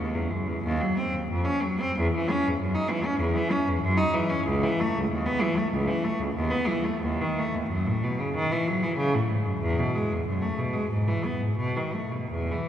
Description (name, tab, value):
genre	classical, baroque-style suite movement for unaccompanied cello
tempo	77-98 BPM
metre	4/4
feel	rubato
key	unclear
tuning	A4 = 444 Hz
part	rich cello	solo	0.0-12.7 s	C#2 to D#4	-24 LUFS	equal	none
room	wet cathedral reverb, RT60 5.8 s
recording	heard from further back in the room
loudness	-24 LUFS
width	side -10 dB against mid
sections	0.0-12.7 A section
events	none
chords	none